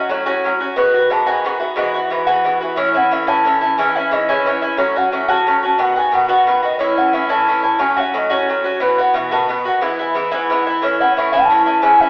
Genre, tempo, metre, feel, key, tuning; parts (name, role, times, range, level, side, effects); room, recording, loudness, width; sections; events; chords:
celtic folk; 119 BPM (dotted quarters); 6/8; straight; A4 = 440 Hz
mellow hollow baroque flute; melody; 0.0-12.1 s; B4 to A5; -16 LUFS; equal
Irish bouzouki; accompaniment; 0.0-12.1 s; G#2 to F#4; -17 LUFS; equal
wet stone room reverb, RT60 1.1 s; band playing live in one room, AM radio sound; -13 LUFS; side -29 dB against mid
0.0-2.8 A section; 2.8-10.8 B section; 10.8-12.1 B section
0.0 F#m; 0.8 B6; 1.8 Eadd9; 2.8 A; 3.8 C#m; 4.8 F#m; 5.8 B; 6.8 A; 7.8 F#m; 8.8 Bsus4; 9.3 B; 9.8 E; 10.8 A